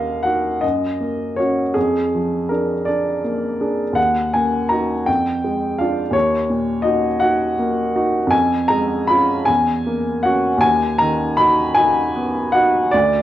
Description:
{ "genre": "classical, romantic character piece for solo piano", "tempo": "50-57 BPM (dotted quarters)", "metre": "6/8", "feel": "rubato", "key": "Eb minor", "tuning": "A4 = 440 Hz", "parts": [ { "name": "warm upright piano", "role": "solo", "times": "0.0-13.2 s", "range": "D2 to B5", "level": "-16 LUFS", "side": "equal", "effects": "none" } ], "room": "moderate large studio reverb, RT60 1.2 s", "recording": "worn, warbling old tape, cassette tape, warbly pitch drift", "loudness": "-16 LUFS", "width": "side -13 dB against mid", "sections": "0.0-13.2 A section", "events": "none", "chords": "0.0 Ebm; 0.6 Gb; 1.8 Bb7/F; 4.0 Ebm; 5.1 Ddim/F; 6.1 Ebm; 8.3 C#/E#; 9.5 F#7/E; 10.6 B/D#" }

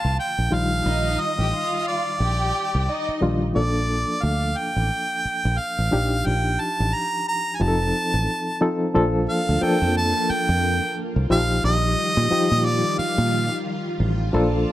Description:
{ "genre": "soul", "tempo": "89 BPM", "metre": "4/4", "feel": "swing 58% on 16ths", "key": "unclear", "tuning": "A4 = 439 Hz", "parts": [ { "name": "clear harmonica", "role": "melody", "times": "0.0-13.6 s", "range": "D5 to Bb5", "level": "-24 LUFS", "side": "right 1 dB", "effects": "none" }, { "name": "warm studio violin section", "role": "second line", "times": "0.0-3.4, 14.3-14.7 s", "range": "Eb4 to A5", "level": "-29 LUFS", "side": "right 1 dB", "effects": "none" }, { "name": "barky reed electric piano", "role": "accompaniment", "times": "0.0-14.7 s", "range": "D3 to A4", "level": "-25 LUFS", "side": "left 1 dB", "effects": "overdrive, fast tremolo" }, { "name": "fingered electric bass", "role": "bass", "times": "0.0-14.6 s", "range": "F1 to Bb2", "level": "-23 LUFS", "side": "equal", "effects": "none" }, { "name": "string machine, violins", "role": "sustained chords", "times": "8.9-14.7 s", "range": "Eb3 to A4", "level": "-30 LUFS", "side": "left 1 dB", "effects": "ensemble chorus" } ], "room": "light reverb, small room ambience", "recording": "none", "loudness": "-20 LUFS", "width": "side -14 dB against mid", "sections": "0.0-9.0 A section; 9.0-14.7 B section", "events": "none", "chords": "0.0 Bbmaj7; 0.5 Ebmaj9; 3.6 Bbmaj7; 5.9 Ebmaj9/Bb; 7.6 F7; 9.0 Bbmaj7; 11.3 Ebadd9/Bb" }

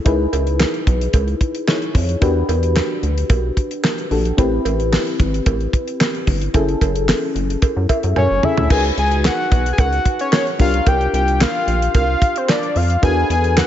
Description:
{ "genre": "early-eighties boogie funk", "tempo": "111 BPM", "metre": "4/4", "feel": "straight", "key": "unclear", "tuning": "A4 = 440 Hz", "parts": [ { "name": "mellow FM electric piano", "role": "accompaniment", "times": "0.0-13.7 s", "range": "C4 to G#5", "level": "-22 LUFS", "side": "left 3 dB", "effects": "chorus" }, { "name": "rubbery square bass", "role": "bass", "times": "0.1-13.6 s", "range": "F#1 to F#2", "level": "-19 LUFS", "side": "equal", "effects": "none" }, { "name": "damped 70s drum kit", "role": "drums", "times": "0.1-13.7 s", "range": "crash cymbal, handclaps, hi-hat, kick drum, snare drum, toms", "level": "-18 LUFS", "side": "equal", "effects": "none" }, { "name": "cowbell", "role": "percussion", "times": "0.1-13.7 s", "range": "none", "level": "-27 LUFS", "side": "right 9 dB", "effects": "none" }, { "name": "fat analog lead", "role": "melody", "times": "8.2-13.7 s", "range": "C5 to G#5", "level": "-19 LUFS", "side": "left 2 dB", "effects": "diffuse ambient delay" } ], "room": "light reverb", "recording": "nothing above 7.8 kHz", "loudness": "-15 LUFS", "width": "side -11 dB against mid", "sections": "0.0-8.7 A section; 8.7-13.7 B section", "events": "FM electric piano fill 7.6-8.7; drum fill 8.2-8.7", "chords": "0.1 C#m9; 2.2 Em9; 4.4 Am9; 6.5 F#m9; 8.7 C#9sus4; 10.6 C9sus4; 13.0 E9sus4" }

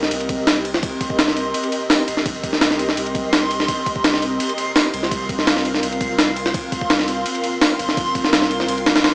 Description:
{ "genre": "drum and bass, jungle", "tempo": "168 BPM", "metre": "4/4", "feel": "straight", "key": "C minor", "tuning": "A4 = 442 Hz", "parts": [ { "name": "soft dub sub bass", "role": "bass", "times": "0.0-9.1 s", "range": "G1 to C2", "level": "-33 LUFS", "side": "equal", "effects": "none" }, { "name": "breakbeat sampler-style drum kit", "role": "drums", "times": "0.0-9.1 s", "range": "hi-hat, kick drum, ride cymbal, snare drum", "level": "-18 LUFS", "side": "equal", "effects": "studio reverb" }, { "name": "backwards swelling texture", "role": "texture", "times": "0.9-9.1 s", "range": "C6", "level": "-26 LUFS", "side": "right 1 dB", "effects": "built-in reverb" } ], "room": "light reverb, digital ambience", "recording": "dry, gritty hardware recording, transformer saturation, vinyl crackle, small speaker sound", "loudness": "-16 LUFS", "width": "side -25 dB against mid", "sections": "0.0-9.1 A section", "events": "none", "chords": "0.0 Cm7; 5.1 Bbsus2" }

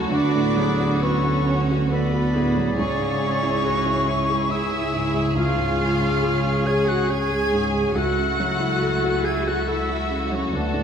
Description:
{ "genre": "cinematic", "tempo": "69 BPM", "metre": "3/4", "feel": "rubato", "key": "F# minor", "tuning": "A4 = 438 Hz", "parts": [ { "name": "muted studio violin section", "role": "melody", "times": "0.0-10.8 s", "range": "F#4 to G#4", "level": "-32 LUFS", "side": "left 2 dB", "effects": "none" }, { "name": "clear clarinet", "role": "second line", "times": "0.0-10.8 s", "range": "E4 to B4", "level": "-33 LUFS", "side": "equal", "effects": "none" }, { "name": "muted studio violin section", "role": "second line", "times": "0.0-10.8 s", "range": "A4 to G#5", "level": "-32 LUFS", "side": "left 2 dB", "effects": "none" }, { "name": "silver concert flute", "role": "second line", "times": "0.0-10.8 s", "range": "A5 to G#6", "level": "-28 LUFS", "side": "left 2 dB", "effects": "none" }, { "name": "warm oboe", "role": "second line", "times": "0.0-10.8 s", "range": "B4 to E5", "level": "-32 LUFS", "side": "right 2 dB", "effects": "none" }, { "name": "muted studio viola section", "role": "accompaniment", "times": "0.0-10.8 s", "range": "D3 to E4", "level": "-33 LUFS", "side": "right 2 dB", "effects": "none" }, { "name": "warm grand piano", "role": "accompaniment", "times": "0.0-10.8 s", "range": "C#2 to F#5", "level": "-26 LUFS", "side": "left 1 dB", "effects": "none" }, { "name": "mellow French horn section", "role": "sustained chords", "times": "0.0-10.8 s", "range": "C#3 to G#4", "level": "-28 LUFS", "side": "left 3 dB", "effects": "none" }, { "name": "muted studio cello section", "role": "bass", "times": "0.0-10.8 s", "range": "A3 to G#4", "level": "-28 LUFS", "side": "right 4 dB", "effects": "none" }, { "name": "muted studio double bass section", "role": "bass", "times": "0.0-10.8 s", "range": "C#2 to D2", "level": "-26 LUFS", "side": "right 2 dB", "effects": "none" } ], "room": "wet scoring stage reverb, RT60 1.9 s", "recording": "none", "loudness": "-19 LUFS", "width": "side -7 dB against mid", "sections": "0.0-10.8 A section", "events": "none", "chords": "0.1 Bm7/D; 2.8 C#m; 5.4 C#; 8.0 F#m7/C#" }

